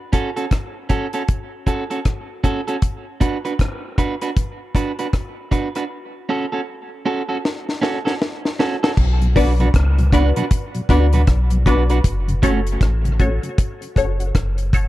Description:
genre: dub reggae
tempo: 78 BPM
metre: 4/4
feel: swing 62% on 16ths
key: B minor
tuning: A4 = 437 Hz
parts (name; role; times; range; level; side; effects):
- electric guitar at the edge of break-up; accompaniment; 0.1-12.6 s; A3 to B4; -23 LUFS; right 3 dB; warbly pitch drift, high-pass filter, dub echo
- deep reggae drum kit; drums; 0.1-14.9 s; crash cymbal, hi-hat, kick drum, rim click, snare drum; -19 LUFS; equal; none
- soft dub sub bass; bass; 9.0-14.9 s; F#1 to D2; -17 LUFS; equal; none
- mellow tonewheel organ; accompaniment; 9.2-14.8 s; F#2 to F#4; -26 LUFS; left 2 dB; chorus vibrato, high-pass filter
- filtered dub chord stab; stabs; 9.4-14.9 s; F#4 to D5; -26 LUFS; left 4 dB; phaser, high-pass filter, dub echo
room: light reverb, small room ambience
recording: dark, warm production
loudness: -17 LUFS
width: side -16 dB against mid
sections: 0.0-9.0 A section; 9.0-14.9 B section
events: drum fill 7.4-9.0; break 12.0-14.9; filter sweep 12.0-14.9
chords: 0.0 F#m; 2.8 Bm; 5.9 F#m; 9.0 Bm; 12.0 F#m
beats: 0.52 1.29 2.06 | 2.82 3.59 4.36 5.13 | 5.90 6.67 7.43 8.20 | 8.97 9.74 10.51 11.28 | 12.04 12.81 13.58 14.35

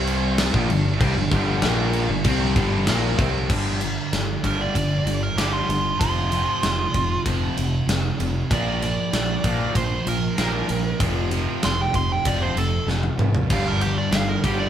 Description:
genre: hard rock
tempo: 96 BPM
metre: 4/4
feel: straight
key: unclear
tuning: A4 = 438 Hz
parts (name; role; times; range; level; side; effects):
- biting overdriven guitar; riff; 0.0-3.5, 13.5-14.7 s; G2 to C4; -28 LUFS; equal; none
- heavy high-gain guitar; riff; 0.0-14.7 s; F2 to C4; -28 LUFS; right 6 dB; distortion
- overdriven semi-hollow guitar; riff; 0.0-14.7 s; F2 to C4; -28 LUFS; left 6 dB; phaser
- growling fingered electric bass; bass; 0.0-14.7 s; F1 to C2; -26 LUFS; equal; overdrive
- big rock drum kit; drums; 0.1-14.6 s; crash cymbal, kick drum, ride cymbal, snare drum, toms; -24 LUFS; equal; none
- nasal lead guitar with a parked wah; melody; 4.5-14.7 s; F4 to C6; -26 LUFS; right 3 dB; overdrive
room: moderate large studio reverb, RT60 1.4 s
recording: band playing live in one room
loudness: -19 LUFS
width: side -10 dB against mid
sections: 0.0-3.5 A section; 3.5-14.7 B section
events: lead electric guitar solo 3.5-14.7; drum fill 12.9-13.5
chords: 0.0 C5; 0.5 G5; 6.0 F5; 8.5 Bb; 11.0 F5; 13.5 G5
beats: 0.39 | 1.01 1.64 2.26 2.88 | 3.51 4.13 4.76 5.38 | 6.01 6.63 7.26 7.88 | 8.51 9.13 9.76 10.38 | 11.01 11.63 12.26 12.88 | 13.50 14.12

